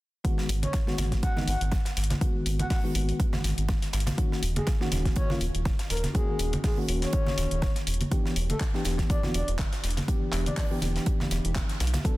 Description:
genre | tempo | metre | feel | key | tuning
deep house | 122 BPM | 4/4 | swing 55% on 16ths | G# minor | A4 = 439 Hz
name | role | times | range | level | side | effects
mellow FM electric piano | stabs | 0.2-12.2 s | D#3 to A4 | -33 LUFS | left 1 dB | chorus, sidechain pumping, digital delay
deep house drum kit | drums | 0.2-12.2 s | handclaps, hi-hat | -35 LUFS | left 1 dB | none
electronic kick drum | drums | 0.2-12.2 s | none | -27 LUFS | equal | none
tight metal drum kit | drums | 0.2-12.2 s | hi-hat, snare drum | -41 LUFS | right 2 dB | high-pass filter on hats, high-pass filter on snare, high-pass filter on room
granular cloud pad | texture | 1.9-12.2 s | B3 to B5 | -48 LUFS | right 2 dB | none
rubbery square bass | bass | 0.5-12.0 s | D#1 to B1 | -28 LUFS | equal | sidechain pumping
breathy flute-like synth lead | melody | 0.6-10.7 s | G#4 to F#5 | -36 LUFS | left 1 dB | chorus, vintage 12-bit sampler grit, tape echo
congas | percussion | 0.6-12.0 s | none | -36 LUFS | right 1 dB | none
room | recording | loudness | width
studio ambience | dense, heavily limited modern master | -25 LUFS | side -18 dB against mid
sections
0.2-12.2 A section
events
none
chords
0.2 G#m7; 4.2 D#m7; 7.9 Em7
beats
| 0.25 0.74 1.23 1.72 | 2.21 2.71 3.20 3.69 | 4.18 4.67 5.16 5.66 | 6.15 6.64 7.13 7.62 | 8.12 8.61 9.10 9.59 | 10.08 10.57 11.07 11.56 | 12.05

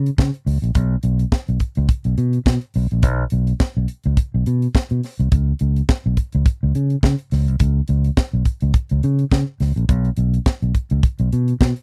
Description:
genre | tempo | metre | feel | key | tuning
disco | 105 BPM | 4/4 | swing 56% on 16ths | unclear | A4 = 440 Hz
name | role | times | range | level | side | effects
fingered electric bass | bass | 0.0-11.7 s | A#1 to C#3 | -20 LUFS | equal | none
tight funk drum kit | drums | 0.1-11.8 s | hi-hat, kick drum, snare drum | -18 LUFS | equal | none
room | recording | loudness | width
little or no reverb | dry, close 1970s-style studio recording | -19 LUFS | mono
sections
0.0-11.8 A section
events
none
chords
none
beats
0.18 | 0.75 1.32 1.90 2.47 | 3.04 3.61 4.18 4.75 | 5.32 5.89 6.46 7.03 | 7.61 8.18 8.75 9.32 | 9.89 10.46 11.04 11.61

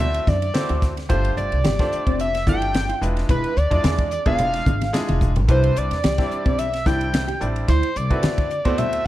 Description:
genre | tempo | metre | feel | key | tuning
electric jazz fusion | 109 BPM | 4/4 | swing 54% on 16ths | C major | A4 = 439 Hz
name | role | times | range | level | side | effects
overdriven synth lead | melody | 0.0-9.1 s | B4 to G5 | -24 LUFS | equal | none
bright baby grand piano | accompaniment | 0.0-9.1 s | G3 to D5 | -28 LUFS | equal | none
mellow electric guitar | stabs | 0.0-8.9 s | B3 to G#4 | -29 LUFS | equal | wide subtle chorus
upright bass | bass | 0.0-9.0 s | E1 to D3 | -23 LUFS | equal | none
crisp fusion drum kit | drums | 0.0-9.0 s | hi-hat, kick drum, ride cymbal, snare drum | -23 LUFS | equal | none
congas | percussion | 0.0-8.9 s | none | -26 LUFS | left 1 dB | none
room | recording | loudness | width
light reverb, small room reverb | dark, warm production | -18 LUFS | side -14 dB against mid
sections
0.0-9.1 A section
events
drum fill 4.8-5.5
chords
0.0 D9; 1.1 G7sus4; 3.0 E7b9; 5.5 Cmaj7; 7.7 D13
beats
0.00 0.55 | 1.10 1.65 2.19 2.74 | 3.29 3.84 4.39 4.94 | 5.49 6.04 6.59 7.13 | 7.68 8.23 8.78

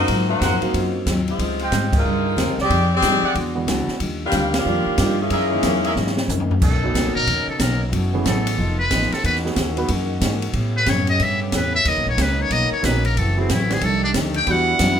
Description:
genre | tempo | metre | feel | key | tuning
jazz, big band swing | 183 BPM | 4/4 | swing 63% on 8ths | unclear | A4 = 440 Hz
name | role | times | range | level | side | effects
warm saxophone section | melody | 0.0-6.3 s | Fb3 to D5 | -21 LUFS | left 2 dB | none
warm upright piano | accompaniment | 0.0-15.0 s | Eb3 to F5 | -27 LUFS | right 4 dB | none
upright bass | bass | 0.0-15.0 s | F1 to A2 | -23 LUFS | right 1 dB | none
picked steel-string acoustic guitar | accompaniment | 0.1-15.0 s | F2 to A4 | -27 LUFS | left 3 dB | none
open jazz drum kit | drums | 0.1-14.9 s | crash cymbal, hi-hat, kick drum, ride cymbal, snare drum, toms | -25 LUFS | equal | none
bright trumpet section | stabs | 0.4-3.3, 5.3-5.9 s | Ab4 to G5 | -26 LUFS | right 3 dB | none
trumpet with metal mute | melody | 6.6-15.0 s | C4 to G5 | -21 LUFS | left 1 dB | none
bright trombone section | sustained chords | 6.6-15.0 s | B2 to G4 | -31 LUFS | equal | none
room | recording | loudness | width
moderate club reverb, RT60 0.8 s | minimal, uncompressed stereo recording | -17 LUFS | side -8 dB against mid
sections
0.0-6.6 A section; 6.6-15.0 B section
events
band accent 1.9, 4.5; drum fill 6.0-6.6; muted trumpet solo 6.6-15.0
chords
0.1 Ab13; 1.4 Dbmaj9#11; 2.7 Fm9; 3.4 E9; 4.0 Ebmaj9; 5.3 Gb13; 6.6 Bmaj9; 7.9 F#m11; 8.6 F7#11; 9.2 Emaj9#11; 10.5 A9; 11.9 Bmaj9; 13.2 F#m7b5; 13.8 F13; 14.5 Em9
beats
| 0.09 0.41 0.74 1.06 | 1.39 1.72 2.04 2.37 | 2.70 3.02 3.35 3.68 | 4.00 4.33 4.66 4.98 | 5.31 5.64 5.97 6.29 | 6.62 6.95 7.27 7.60 | 7.93 8.26 8.58 8.91 | 9.24 9.56 9.89 10.22 | 10.54 10.87 11.20 11.53 | 11.85 12.18 12.51 12.84 | 13.16 13.49 13.82 14.15 | 14.47 14.80

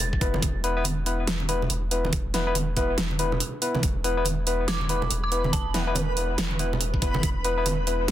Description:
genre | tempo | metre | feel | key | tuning
deep dubstep | 141 BPM | 4/4 | swing 61% on 16ths, half-time | unclear | A4 = 440 Hz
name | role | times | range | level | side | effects
dark detuned synth bell | melody | 0.0-0.1, 4.7-5.9 s | A5 to A6 | -34 LUFS | right 4 dB | chorus, dub echo
saturated sub bass | bass | 0.0-8.1 s | E1 to F1 | -29 LUFS | equal | none
dubstep drum kit | drums | 0.0-8.1 s | hi-hat, snare drum | -28 LUFS | right 1 dB | overdrive
electronic kick drum | drums | 0.1-7.3 s | none | -26 LUFS | equal | overdrive
barky tine electric piano | stabs | 0.2-8.0 s | B3 to B4 | -28 LUFS | left 3 dB | overdrive, dub echo
congas | percussion | 0.3-7.8 s | none | -32 LUFS | right 3 dB | dub echo
backwards swelling texture | texture | 4.4-8.1 s | B4 | -35 LUFS | right 3 dB | built-in reverb
room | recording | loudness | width
light reverb | dense, heavily limited modern master | -23 LUFS | side -12 dB against mid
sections
0.0-8.1 A section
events
none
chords
0.0 E5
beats
0.00 | 0.42 0.85 1.27 1.70 | 2.13 2.55 2.98 3.40 | 3.83 4.25 4.68 5.11 | 5.53 5.96 6.38 6.81 | 7.23 7.66 8.08

